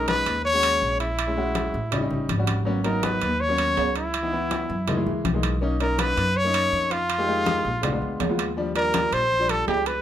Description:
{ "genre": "Afro-Cuban jazz", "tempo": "163 BPM", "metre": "4/4", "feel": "straight", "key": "B major", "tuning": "A4 = 442 Hz", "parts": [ { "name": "breathy trumpet", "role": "melody", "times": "0.0-10.0 s", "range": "E4 to C#5", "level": "-23 LUFS", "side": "equal", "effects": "none" }, { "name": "clear concert grand piano", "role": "accompaniment", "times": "0.0-9.9 s", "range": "E3 to G4", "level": "-28 LUFS", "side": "left 2 dB", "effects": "none" }, { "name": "upright bass", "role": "bass", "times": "0.0-10.0 s", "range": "G#1 to F#2", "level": "-29 LUFS", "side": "equal", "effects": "none" }, { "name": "congas", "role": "percussion", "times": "0.1-10.0 s", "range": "none", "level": "-31 LUFS", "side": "left 2 dB", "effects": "none" }, { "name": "timbales", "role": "percussion", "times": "0.1-10.0 s", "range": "none", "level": "-30 LUFS", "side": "right 9 dB", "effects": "none" } ], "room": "moderate club reverb, RT60 0.7 s", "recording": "minimal, uncompressed stereo recording", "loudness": "-21 LUFS", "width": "side -10 dB against mid", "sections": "0.0-10.0 A section", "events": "none", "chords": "0.0 B69; 1.2 A#m7b5; 1.9 A7#11; 2.7 G#m11; 4.1 C#m7; 4.9 F#13; 5.6 Bmaj9; 7.1 Fm11; 7.8 A#7b9; 8.6 D#maj9" }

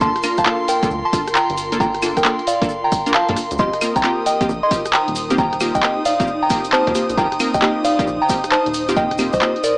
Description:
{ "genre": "UK garage, two-step garage", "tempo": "134 BPM", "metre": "4/4", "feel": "swing 65% on 16ths", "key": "unclear", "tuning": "A4 = 437 Hz", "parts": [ { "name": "soft synth bell", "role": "melody", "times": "0.0-9.8 s", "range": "Bb4 to C6", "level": "-19 LUFS", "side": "equal", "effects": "chorus" }, { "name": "airy breathy pad", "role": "sustained chords", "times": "0.0-9.8 s", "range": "C6 to Eb6", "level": "-27 LUFS", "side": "equal", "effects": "chorus, sidechain pumping" }, { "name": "punchy chord stab", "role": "stabs", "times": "0.0-9.6 s", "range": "Bb3 to Bb4", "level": "-22 LUFS", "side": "equal", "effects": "chorus" }, { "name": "rubbery square bass", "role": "bass", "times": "0.0-9.4 s", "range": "Eb1 to G2", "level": "-28 LUFS", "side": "equal", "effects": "tube saturation" }, { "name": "electronic kick drum", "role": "drums", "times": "0.0-9.4 s", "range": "none", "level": "-25 LUFS", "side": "equal", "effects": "none" }, { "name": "cabasa", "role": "percussion", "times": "0.0-9.8 s", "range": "none", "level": "-33 LUFS", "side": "equal", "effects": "none" }, { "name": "granular cloud pad", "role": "texture", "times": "0.0-9.8 s", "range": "Eb4 to C5", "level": "-27 LUFS", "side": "equal", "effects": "built-in reverb, sidechain pumping" }, { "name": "punchy analog drum machine", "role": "drums", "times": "0.2-9.8 s", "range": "claves, handclaps, hi-hat, rim click", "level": "-21 LUFS", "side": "equal", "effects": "none" } ], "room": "light reverb", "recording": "dry, gritty hardware recording, small speaker sound", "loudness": "-15 LUFS", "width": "side -26 dB against mid", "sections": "0.0-9.8 A section", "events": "none", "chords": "0.0 Gm7; 3.6 Eb6" }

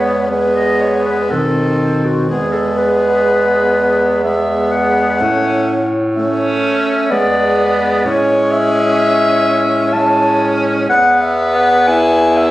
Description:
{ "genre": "classical, lyrical piece for single-reed quartet", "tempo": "62 BPM", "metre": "3/4", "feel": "rubato", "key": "E major", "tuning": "A4 = 440 Hz", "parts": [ { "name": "warm clarinet", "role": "melody", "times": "0.0-12.5 s", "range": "F#4 to A5", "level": "-15 LUFS", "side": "left 1 dB", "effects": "none" }, { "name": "clear alto saxophone", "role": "second line", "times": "0.0-12.5 s", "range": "B3 to E4", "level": "-17 LUFS", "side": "right 2 dB", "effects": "none" }, { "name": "warm tenor saxophone", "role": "accompaniment", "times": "0.0-12.5 s", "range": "D#3 to B3", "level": "-19 LUFS", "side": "left 1 dB", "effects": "none" }, { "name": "mellow bass clarinet", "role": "bass", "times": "0.0-12.5 s", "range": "E2 to B2", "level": "-20 LUFS", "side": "equal", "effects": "none" } ], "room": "moderate recital hall reverb, RT60 1.6 s", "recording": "recorded on a phone in the room, studio reverb, compression", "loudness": "-11 LUFS", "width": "side -16 dB against mid", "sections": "0.0-12.5 A section", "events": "none", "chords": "0.0 E; 1.3 B7b9; 2.3 E; 5.2 A; 7.1 E7; 8.1 Amaj7; 10.9 E5" }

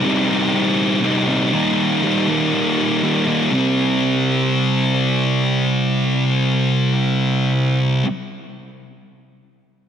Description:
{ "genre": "rock", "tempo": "120 BPM", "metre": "4/4", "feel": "straight", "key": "C minor", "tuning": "A4 = 440 Hz", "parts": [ { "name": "thick fuzz guitar", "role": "solo", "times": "0.0-8.1 s", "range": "C3 to Eb4", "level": "-16 LUFS", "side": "equal", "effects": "distortion" } ], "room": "moderate lush hall reverb, RT60 2.8 s", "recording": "home recording on cassette", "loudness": "-15 LUFS", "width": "side -8 dB against mid", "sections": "0.0-3.5 A section; 3.5-7.5 B section", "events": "none", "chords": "0.0 Cm; 1.5 Eb; 3.5 C5" }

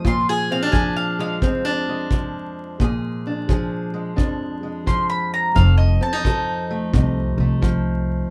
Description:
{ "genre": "acoustic country blues, solo or duo", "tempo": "87 BPM", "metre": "4/4", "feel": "swing 66% on 8ths", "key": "unclear", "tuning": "A4 = 440 Hz", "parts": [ { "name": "mandolin", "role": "melody", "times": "0.0-7.4 s", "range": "Eb5 to C6", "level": "-26 LUFS", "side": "equal", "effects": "none" }, { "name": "fingerpicked steel-string acoustic guitar", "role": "accompaniment", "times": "0.0-8.3 s", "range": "F2 to A4", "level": "-25 LUFS", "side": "equal", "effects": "none" }, { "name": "kick drum", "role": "drums", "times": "0.0-7.8 s", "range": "none", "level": "-24 LUFS", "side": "equal", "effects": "none" }, { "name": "upright bass", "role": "bass", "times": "5.6-8.2 s", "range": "F1 to C2", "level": "-20 LUFS", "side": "equal", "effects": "none" } ], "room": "moderate studio ambience, RT60 0.5 s", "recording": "vinyl crackle", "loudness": "-21 LUFS", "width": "mono", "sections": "0.0-8.3 A section", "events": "none", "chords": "0.0 Bb7; 5.6 F7" }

